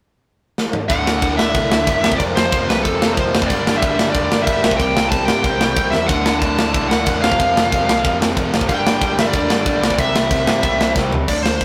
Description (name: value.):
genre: punk rock.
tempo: 185 BPM.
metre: 4/4.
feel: straight.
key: unclear.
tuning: A4 = 440 Hz.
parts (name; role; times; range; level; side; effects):
tight metal drum kit; drums; 0.6-11.6 s; crash cymbal, hi-hat, kick drum, snare drum, toms; -20 LUFS; equal; none.
smooth overdriven lead guitar; melody; 0.9-11.6 s; A4 to A5; -22 LUFS; equal; none.
heavy high-gain guitar; riff; 0.9-11.1 s; D2 to C4; -29 LUFS; equal; none.
overdriven electric guitar; riff; 0.9-11.3 s; D2 to C4; -28 LUFS; equal; none.
raw garage guitar; riff; 0.9-11.6 s; D2 to C4; -28 LUFS; equal; overdrive.
overdriven picked electric bass; bass; 0.9-11.6 s; D1 to G2; -30 LUFS; equal; none.
room: moderate studio reverb, RT60 0.6 s.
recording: rough rehearsal-room recording.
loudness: -17 LUFS.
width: mono.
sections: 0.9-11.3 A section.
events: drum fill 0.6-0.9, 5.9, 11.0-11.3.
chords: 0.0 N.C.; 0.9 D; 2.0 F; 3.5 G5; 4.6 C; 6.1 D; 7.2 F5; 8.7 G; 9.8 C.